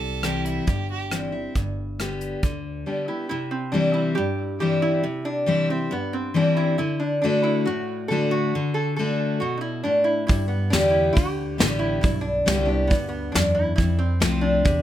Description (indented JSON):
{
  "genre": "honky-tonk and classic country",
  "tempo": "138 BPM",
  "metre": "4/4",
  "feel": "straight",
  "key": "G major",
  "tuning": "A4 = 438 Hz",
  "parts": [
    { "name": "bright fiddle", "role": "second line", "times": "0.0-1.1 s", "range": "E4 to A4", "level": "-31 LUFS", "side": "right 6 dB", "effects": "none" },
    { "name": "picked steel-string acoustic guitar", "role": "accompaniment", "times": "0.0-14.8 s", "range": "F2 to G4", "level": "-24 LUFS", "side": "left 2 dB", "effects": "none" },
    { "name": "upright bass", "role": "bass", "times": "0.0-2.8, 10.3-14.8 s", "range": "G1 to G2", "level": "-27 LUFS", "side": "right 1 dB", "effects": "none" },
    { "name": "soft brush drum kit", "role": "drums", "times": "0.2-2.5, 10.3-14.8 s", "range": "hi-hat, kick drum, rim click, snare drum", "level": "-22 LUFS", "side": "equal", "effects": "none" },
    { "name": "lap resonator guitar", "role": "melody", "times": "2.9-14.8 s", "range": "B3 to A4", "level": "-25 LUFS", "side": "right 1 dB", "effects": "tape echo" }
  ],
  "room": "moderate studio reverb, RT60 0.6 s",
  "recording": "none",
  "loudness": "-21 LUFS",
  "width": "side -12 dB against mid",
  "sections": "0.0-3.3 A section; 3.3-14.8 B section",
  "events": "none",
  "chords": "0.0 C; 1.6 G; 3.3 C; 6.8 D; 10.3 G; 13.8 F"
}